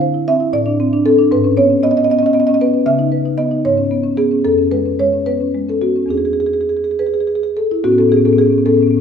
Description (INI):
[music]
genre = classical, contemporary piece for solo marimba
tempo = 68-78 BPM (dotted quarters)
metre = 6/8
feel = rubato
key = A major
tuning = A4 = 439 Hz
[part]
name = marimba with soft mallets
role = solo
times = 0.0-9.0 s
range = E2 to F5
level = -12 LUFS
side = equal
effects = none
[sound]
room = moderate concert hall reverb, RT60 2.1 s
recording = none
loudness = -12 LUFS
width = side -7 dB against mid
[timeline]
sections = 0.0-7.8 A section; 7.8-9.0 B section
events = none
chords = 0.0 Dm9; 0.5 Amadd11; 1.3 G#madd11; 2.9 C#m9; 3.7 G#madd11; 4.4 F#sus2; 6.1 Eaug7; 7.8 Aadd9